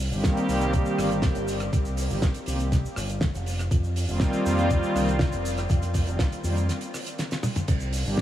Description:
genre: nu-disco, nu disco.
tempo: 121 BPM.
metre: 4/4.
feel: straight.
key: unclear.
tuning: A4 = 440 Hz.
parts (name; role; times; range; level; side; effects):
fingered electric bass with an envelope filter; bass; 0.0-8.1 s; F1 to F2; -27 LUFS; equal; none.
warm analog pad; accompaniment; 0.1-8.2 s; Eb3 to G4; -28 LUFS; equal; chorus, cassette tape, sidechain pumping, tape echo.
damped 70s drum kit; drums; 0.1-8.2 s; crash cymbal, hi-hat, rim click, shaker, snare drum, toms; -31 LUFS; right 1 dB; small room ambience.
electronic kick drum; drums; 0.2-8.2 s; none; -24 LUFS; equal; small room ambience.
room: moderate huge ambient reverb, RT60 8.6 s.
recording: dreamy mix soaked in reverb.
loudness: -23 LUFS.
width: side -12 dB against mid.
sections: 0.0-8.2 A section.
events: break 6.7-7.7; drum fill 7.2-7.7.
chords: 0.0 F9sus4.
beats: 0.24 0.74 1.23 | 1.73 2.23 2.72 3.22 | 3.71 4.21 4.71 5.20 | 5.70 6.19 6.69 7.18 | 7.68 8.18.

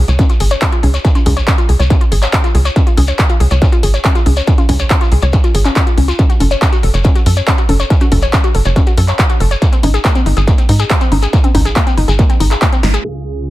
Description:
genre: uplifting trance.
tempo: 140 BPM.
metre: 4/4.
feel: straight.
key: Db major.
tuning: A4 = 438 Hz.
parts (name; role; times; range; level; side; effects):
tight sequencer bass; bass; 0.0-13.0 s; Gb1 to Ab2; -12 LUFS; equal; tube saturation, sidechain pumping.
wide unison pluck; arpeggios; 0.1-13.0 s; Bb3 to Db5; -19 LUFS; left 3 dB; sidechain pumping, dub echo.
punchy analog drum machine; drums; 0.1-13.5 s; congas, crash cymbal, handclaps, hi-hat, snare drum; -18 LUFS; equal; sidechain pumping on hats, sidechain pumping on cymbals, sidechain pumping on perc.
shekere; percussion; 0.1-13.0 s; none; -26 LUFS; left 3 dB; none.
electronic kick drum; drums; 0.2-12.7 s; none; -12 LUFS; equal; distortion, overdrive.
big supersaw lead; melody; 13.0-13.3 s; F5; -43 LUFS; right 2 dB; sidechain pumping, low-pass filter, ping-pong delay.
bright grand piano; second line; 13.0-13.5 s; Ab4; -26 LUFS; right 3 dB; none.
muted studio string section; sustained chords; 13.0-13.5 s; Db2 to Ab4; -22 LUFS; right 1 dB; sidechain pumping.
room: digital ambience.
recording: low-pass filter.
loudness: -10 LUFS.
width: side -16 dB against mid.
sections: 0.0-13.0 A section.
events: drum fill 12.8; band accent 12.8.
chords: 0.0 Db5; 6.2 Gb5; 9.6 N.C..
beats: 0.19 0.62 | 1.05 1.48 1.90 2.33 | 2.76 3.19 3.62 4.05 | 4.47 4.90 5.33 5.76 | 6.19 6.62 7.05 7.47 | 7.90 8.33 8.76 9.19 | 9.62 10.05 10.47 10.90 | 11.33 11.76 12.19 12.62 | 13.05 13.47.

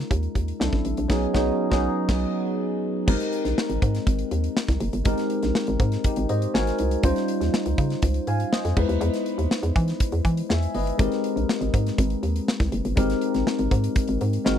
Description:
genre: polished 1980s jazz-funk pop.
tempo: 121 BPM.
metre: 4/4.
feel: straight.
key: Ab major.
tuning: A4 = 440 Hz.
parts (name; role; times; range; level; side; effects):
tine electric piano; accompaniment; 0.0-14.6 s; F#3 to Ab5; -25 LUFS; left 1 dB; lush chorus.
hollow knocking FM bass; bass; 0.0-14.6 s; Gb1 to E3; -25 LUFS; equal; none.
modern studio drum kit; drums; 0.0-14.6 s; crash cymbal, hi-hat, kick drum, snare drum; -25 LUFS; equal; none.
room: studio reverb.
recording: dry, close 1970s-style studio recording.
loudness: -21 LUFS.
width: side -9 dB against mid.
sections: 0.0-3.1 A section; 3.1-14.6 B section.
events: band accent 1.1-3.1; tine electric piano fill 2.1-3.1, 6.3-7.0.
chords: 0.0 Db69; 0.6 C69; 1.1 B69; 3.1 Abmaj9; 6.5 Ab9; 7.0 Dbmaj9#11; 8.8 Emaj7; 11.0 Abmaj9.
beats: 0.11 0.60 | 1.10 1.59 2.09 2.58 | 3.08 3.57 4.07 4.56 | 5.06 5.55 6.05 6.54 | 7.04 7.53 8.03 8.52 | 9.02 9.51 10.01 10.50 | 10.99 11.49 11.98 12.48 | 12.97 13.47 13.96 14.46.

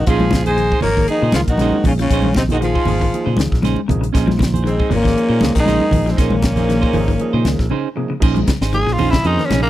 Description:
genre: afrobeat.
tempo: 118 BPM.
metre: 4/4.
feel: swing 54% on 16ths.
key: Bb minor.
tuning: A4 = 440 Hz.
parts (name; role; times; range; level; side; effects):
warm trombone; melody; 0.0-7.7 s; Ab3 to Bb4; -20 LUFS; equal; none.
raspy alto saxophone; second line; 0.0-7.7 s; C4 to Db5; -27 LUFS; right 4 dB; none.
raspy baritone saxophone; second line; 0.0-7.7 s; Ab2 to Bb3; -27 LUFS; left 6 dB; none.
fingered electric bass; bass; 0.0-9.7 s; Ab1 to Bb2; -19 LUFS; equal; none.
overdriven tine electric piano; accompaniment; 0.1-9.5 s; F3 to Bb4; -26 LUFS; right 5 dB; none.
clean electric guitar; stabs; 0.1-9.7 s; Db4 to C5; -24 LUFS; right 10 dB; none.
tight funk drum kit; drums; 0.1-9.6 s; crash cymbal, hi-hat, kick drum, snare drum; -20 LUFS; equal; none.
congas; percussion; 0.1-9.6 s; none; -22 LUFS; equal; none.
semi-hollow electric guitar; arpeggios; 0.2-9.6 s; C3 to F3; -25 LUFS; left 6 dB; none.
raspy tenor saxophone; melody; 8.7-9.7 s; Bb3 to Ab4; -18 LUFS; left 1 dB; tape echo.
room: small room ambience.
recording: dry, close 1970s-style studio recording.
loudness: -14 LUFS.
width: side -14 dB against mid.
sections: 0.0-8.2 A section; 8.2-9.7 B section.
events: break 7.7-8.2; tenor saxophone solo 8.2-9.7.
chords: 0.0 Bbm11.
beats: | 0.07 0.58 1.09 1.60 | 2.11 2.62 3.13 3.64 | 4.15 4.66 5.17 5.68 | 6.19 6.70 7.21 7.72 | 8.23 8.74 9.25.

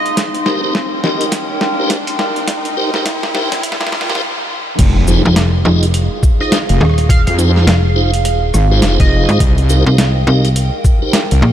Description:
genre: glitch hop.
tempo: 104 BPM.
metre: 4/4.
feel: swing 60% on 16ths.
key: F minor.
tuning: A4 = 438 Hz.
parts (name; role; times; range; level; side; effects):
sync lead; melody; 0.0-0.2, 6.4-9.4 s; Eb5 to F5; -26 LUFS; equal; lush chorus, ping-pong delay.
riser and impact; sound effects; 0.0-7.1 s; none; -25 LUFS; equal; none.
warbly tape-like pad; texture; 0.0-11.5 s; Eb4 to C6; -22 LUFS; right 1 dB; chorus, built-in reverb, sidechain pumping.
boom bap sampler-style drum kit; drums; 0.1-11.5 s; crash cymbal, hi-hat, rim click, shaker, snare drum; -19 LUFS; equal; studio reverb.
electronic kick drum; drums; 0.2-11.0 s; none; -12 LUFS; equal; high-pass filter on kick, studio reverb.
tonewheel organ; stabs; 0.5-11.2 s; Eb4 to Eb5; -20 LUFS; equal; chorus vibrato, fast rotary speaker, sidechain pumping, ping-pong delay.
wobble bass; bass; 4.8-11.4 s; F1 to F2; -12 LUFS; equal; chorus, overdrive.
slap-like FM bass; bass; 5.3-11.5 s; Eb1 to C2; -12 LUFS; equal; tube saturation.
room: light reverb.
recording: high-pass filter.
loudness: -11 LUFS.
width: side -11 dB against mid.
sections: 0.0-4.8 A section; 4.8-11.5 B section.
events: build-up 0.0-4.8; drum fill 0.0-4.2; riser 0.0-4.2; filter sweep 0.0-4.8; stop 4.2-4.8; drop 4.8-11.5; impact 4.8-7.1.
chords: 0.2 Cm7; 4.8 Fm7; 9.4 Cm7.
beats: | 0.18 0.75 1.33 1.91 | 2.48 3.06 3.64 4.22 | 4.79 5.37 5.95 6.52 | 7.10 7.68 8.25 8.83 | 9.41 9.98 10.56 11.14.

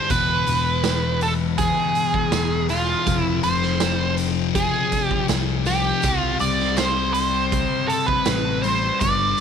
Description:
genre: psychedelic rock.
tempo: 81 BPM.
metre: 4/4.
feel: straight.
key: unclear.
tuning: A4 = 441 Hz.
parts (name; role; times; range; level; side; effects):
dark smooth lead guitar; melody; 0.0-9.4 s; F4 to D5; -22 LUFS; right 4 dB; wah, overdrive, tape echo.
thick fuzz guitar; riff; 0.0-9.4 s; E2 to C4; -24 LUFS; left 14 dB; distortion, phaser.
picked electric bass; bass; 0.1-9.3 s; E1 to C2; -26 LUFS; equal; none.
raw garage drum kit; drums; 0.1-9.4 s; hi-hat, kick drum, snare drum; -27 LUFS; right 4 dB; none.
tambourine; percussion; 0.1-9.4 s; none; -38 LUFS; left 17 dB; none.
room: light reverb, small room ambience.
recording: 1960s-style stereo.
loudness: -18 LUFS.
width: side -7 dB against mid.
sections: 0.0-9.4 A section.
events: none.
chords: 0.1 E; 3.1 Fm; 6.0 C5.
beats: | 0.10 0.84 1.58 2.32 | 3.06 3.81 4.55 5.29 | 6.04 6.78 7.52 8.27 | 9.01.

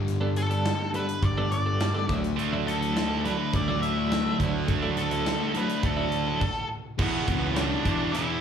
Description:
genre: quiet-loud alternative rock.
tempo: 104 BPM.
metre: 4/4.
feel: straight.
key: unclear.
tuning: A4 = 442 Hz.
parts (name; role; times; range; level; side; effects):
sludgy distorted guitar; riff; 0.0-8.4 s; E2 to D4; -32 LUFS; left 10 dB; overdrive, slapback echo.
fuzz picked electric bass; bass; 0.0-8.4 s; G1 to E2; -30 LUFS; right 1 dB; overdrive.
big rock drum kit; drums; 0.1-8.3 s; crash cymbal, hi-hat, kick drum, snare drum; -31 LUFS; equal; none.
twelve-string electric guitar; arpeggios; 0.2-6.4 s; F#3 to A4; -32 LUFS; right 4 dB; tremolo, slapback echo.
octave-fuzz lead guitar; melody; 0.4-8.4 s; B3 to E5; -31 LUFS; left 2 dB; distortion, slapback echo.
heavy high-gain guitar; riff; 2.4-8.4 s; E2 to D4; -30 LUFS; right 13 dB; distortion, slapback echo.
room: light reverb.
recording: live gig heard through the venue's PA, club ambience.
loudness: -24 LUFS.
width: side -8 dB against mid.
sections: 0.0-7.0 A section; 7.0-8.4 B section.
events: stop 6.4-7.0.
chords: 0.0 Gadd9; 2.1 Dadd9; 7.0 E5.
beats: | 0.07 0.65 1.22 1.80 | 2.37 2.95 3.53 4.10 | 4.68 5.26 5.83 6.41 | 6.99 7.56 8.14.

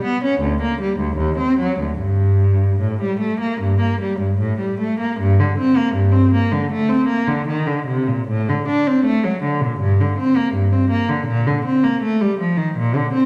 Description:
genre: classical, baroque-style suite movement for unaccompanied cello.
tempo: 71-82 BPM.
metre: 4/4.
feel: rubato.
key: G minor.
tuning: A4 = 440 Hz.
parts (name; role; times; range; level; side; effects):
rich cello; solo; 0.0-13.3 s; D2 to D4; -18 LUFS; equal; none.
room: wet recital hall reverb, RT60 1.3 s.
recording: heard from further back in the room.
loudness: -18 LUFS.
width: mono.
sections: 0.0-5.2 A section; 5.2-13.3 B section.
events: none.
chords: none.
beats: 0.41 1.17 | 2.00 2.81 3.61 4.40 | 5.19 5.96 6.72 7.49 | 8.28 9.04 9.79 10.53 | 11.27 12.02 12.76.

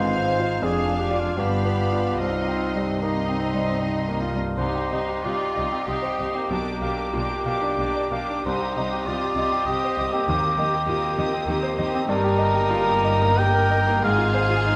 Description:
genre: classical, romantic movement for piano and orchestra.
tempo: 70-101 BPM.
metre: 3/4.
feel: rubato.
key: C minor.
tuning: A4 = 440 Hz.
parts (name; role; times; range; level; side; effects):
clear concert grand piano; melody; 0.0-14.8 s; B1 to F5; -28 LUFS; equal; none.
warm symphonic violin section; melody; 0.0-14.8 s; Ab5 to Eb6; -40 LUFS; equal; none.
clear clarinet; second line; 0.0-3.8 s; Eb4 to C5; -33 LUFS; equal; none.
mellow cor anglais; second line; 0.0-14.8 s; Eb4 to G5; -28 LUFS; equal; none.
mellow hollow silver concert flute; second line; 0.0-4.2 s; Eb5 to F5; -34 LUFS; equal; none.
rich studio violin section; second line; 0.0-14.8 s; Bb3 to F5; -36 LUFS; equal; none.
clear symphonic viola section; accompaniment; 0.0-14.8 s; Bb3 to G4; -34 LUFS; equal; none.
warm bassoon; accompaniment; 0.0-4.6 s; Bb3 to F4; -34 LUFS; equal; none.
mellow French horn section; sustained chords; 0.0-4.2 s; B3 to F4; -34 LUFS; equal; none.
clear symphonic double bass section; bass; 0.0-14.8 s; F1 to Eb2; -33 LUFS; equal; none.
rich symphonic cello section; bass; 0.0-14.8 s; F2 to Eb3; -34 LUFS; equal; none.
room: wet scoring stage reverb, RT60 1.9 s.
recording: none.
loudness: -23 LUFS.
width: mono.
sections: 0.0-4.6 A section; 4.6-14.8 B section.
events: none.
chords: 0.0 Ab6; 0.6 Ddim/F; 1.4 G7; 2.2 Cm; 6.5 G7/B; 8.5 Cm; 10.3 Cm/Eb; 12.1 Eb/G; 14.0 Fm/Ab.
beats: 0.63 1.38 | 2.20 3.02 3.81 | 4.58 5.25 5.87 | 6.50 7.14 7.78 | 8.46 9.07 9.68 | 10.28 10.88 11.48 | 12.09 12.71 13.39 | 14.04 14.67.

